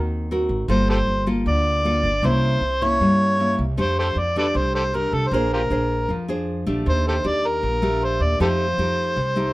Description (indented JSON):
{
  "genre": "bossa nova",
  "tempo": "156 BPM",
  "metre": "4/4",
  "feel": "straight",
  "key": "unclear",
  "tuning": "A4 = 442 Hz",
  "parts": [
    { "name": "overdriven harmonica", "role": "melody", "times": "0.0-9.5 s", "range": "F4 to D5", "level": "-22 LUFS", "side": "equal", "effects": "none" },
    { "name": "nylon-string guitar", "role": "accompaniment", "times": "0.0-9.5 s", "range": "Bb2 to C5", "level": "-24 LUFS", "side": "equal", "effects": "none" },
    { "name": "upright bass", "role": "bass", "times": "0.0-9.5 s", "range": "G1 to G2", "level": "-24 LUFS", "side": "equal", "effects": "none" }
  ],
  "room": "light reverb",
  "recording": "none",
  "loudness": "-18 LUFS",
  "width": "side -19 dB against mid",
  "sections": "0.0-9.5 A section",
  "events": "none",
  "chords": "0.0 G#9; 0.7 Gm9; 2.2 C7b9; 3.8 F69; 5.3 Bb9; 6.9 Ebmaj7#11; 8.4 F9"
}